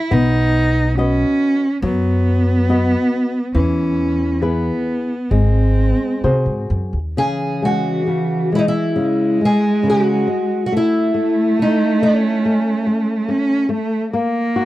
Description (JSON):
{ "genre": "fado-style ballad", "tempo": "64-72 BPM", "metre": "4/4", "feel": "rubato", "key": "C# minor from 7.2 s", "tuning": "A4 = 440 Hz", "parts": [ { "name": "warm cello", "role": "second line", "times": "0.0-14.7 s", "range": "E3 to E4", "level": "-19 LUFS", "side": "right 2 dB", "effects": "none" }, { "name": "flamenco guitar", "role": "accompaniment", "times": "0.1-14.7 s", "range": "C#3 to D#5", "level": "-22 LUFS", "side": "left 3 dB", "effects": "none" }, { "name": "upright bass", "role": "bass", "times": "0.1-7.1 s", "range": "G#1 to B#2", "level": "-17 LUFS", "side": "equal", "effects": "transformer saturation" }, { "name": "fingerpicked twelve-string acoustic guitar", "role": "melody", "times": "7.2-13.7 s", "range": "C#4 to G#4", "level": "-19 LUFS", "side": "equal", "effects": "tape echo" } ], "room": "little or no reverb", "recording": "dry, close 1970s-style studio recording", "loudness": "-15 LUFS", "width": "side -16 dB against mid", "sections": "0.0-7.2 A section; 7.2-14.7 B section", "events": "none", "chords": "0.1 B; 3.5 E; 5.3 G#7; 7.2 C#m; 10.7 N.C.; 14.1 F#/A#" }